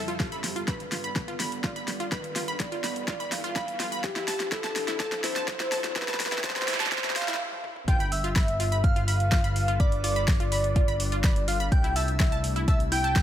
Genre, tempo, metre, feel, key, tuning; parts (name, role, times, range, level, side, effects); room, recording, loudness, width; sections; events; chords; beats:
progressive house; 125 BPM; 4/4; straight; G mixolydian; A4 = 438 Hz
warm velvety synth lead; melody; 0.0-13.2 s; G4 to G5; -32 LUFS; equal; chorus, vintage 12-bit sampler grit, dub echo
evolving wavetable pad; sustained chords; 0.0-13.2 s; F2 to B4; -39 LUFS; left 1 dB; chorus, built-in reverb, sidechain pumping
wide unison pluck; arpeggios; 0.0-13.2 s; E4 to B5; -34 LUFS; right 1 dB; sidechain pumping, dub echo
riser and noise sweep; sound effects; 0.0-7.9 s; -37 LUFS; right 3 dB
deep house drum kit; drums; 0.1-13.2 s; hi-hat, snare drum, toms; -31 LUFS; equal; sidechain pumping on hats, sidechain pumping on toms
electronic kick drum; drums; 0.2-13.2 s; -25 LUFS; equal
soft synth bell; second line; 7.9-13.2 s; D6 to G6; -36 LUFS; right 2 dB; chorus, sidechain pumping, dub echo
fat analog bass; bass; 7.9-13.2 s; G1 to C2; -28 LUFS; equal; sidechain pumping
light reverb; high-pass filter; -24 LUFS; side -11 dB against mid
0.0-7.9 A section; 7.9-13.2 B section
build-up 0.0-7.9; drum fill 0.0-7.4, 7.5-7.9; riser 0.0-7.4; filter sweep on ambient pad 0.0-7.9; filter sweep on soft synth lead 0.0-7.9; noise sweep 6.0-7.9; stop 7.4-7.9; drop 7.9-13.2
0.2 G7; 4.0 C6; 6.0 Fmaj7; 7.9 G7; 11.7 C6
| 0.20 0.68 1.16 1.64 | 2.12 2.60 3.08 3.56 | 4.04 4.52 5.00 5.48 | 5.96 6.44 6.92 7.40 | 7.88 8.36 8.84 9.32 | 9.80 10.28 10.76 11.24 | 11.72 12.20 12.68 13.16